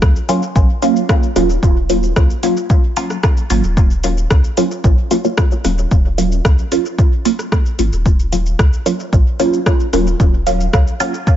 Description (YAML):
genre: dub techno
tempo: 112 BPM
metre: 4/4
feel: straight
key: Eb minor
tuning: A4 = 440 Hz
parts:
  - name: warm sub bass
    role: bass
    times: 0.0-10.8 s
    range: Eb1 to Db2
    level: -17 LUFS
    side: equal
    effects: sidechain pumping
  - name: deep house drum kit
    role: drums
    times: 0.0-11.4 s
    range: hi-hat, rim click, shaker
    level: -23 LUFS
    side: equal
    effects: overdrive, dub echo
  - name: electronic kick drum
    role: drums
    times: 0.0-11.4 s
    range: none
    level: -13 LUFS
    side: equal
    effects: overdrive
  - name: filtered dub chord stab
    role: stabs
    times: 0.3-11.1 s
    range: Gb3 to F4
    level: -17 LUFS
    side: right 1 dB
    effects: phaser, sidechain pumping, dub echo
room: little or no reverb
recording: nothing above 7.6 kHz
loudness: -12 LUFS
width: side -11 dB against mid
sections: 0.0-11.4 A section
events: filter sweep on synth stab 0.0-11.4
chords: 0.0 Ebm7